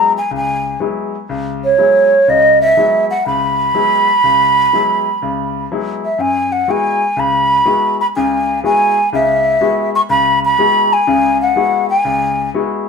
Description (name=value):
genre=jazz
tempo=123 BPM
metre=4/4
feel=swing 67% on 8ths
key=unclear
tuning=A4 = 435 Hz
part: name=mellow hollow jazz flute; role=melody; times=0.0-12.5 s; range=Db5 to Db6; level=-12 LUFS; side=right 1 dB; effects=none
part: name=clear grand piano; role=accompaniment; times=0.0-12.9 s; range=Db2 to Gb4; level=-19 LUFS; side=left 5 dB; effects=none
room=moderate stone room reverb, RT60 1.1 s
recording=band playing live in one room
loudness=-11 LUFS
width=side -5 dB against mid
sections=0.0-6.2 A section; 6.2-12.9 B section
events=none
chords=0.0 Gb9sus4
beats=| 0.30 0.80 1.28 1.77 | 2.27 2.75 3.24 3.73 | 4.22 4.71 5.20 5.69 | 6.18 6.67 7.15 7.64 | 8.13 8.62 9.11 9.60 | 10.09 10.57 11.06 11.55 | 12.04 12.53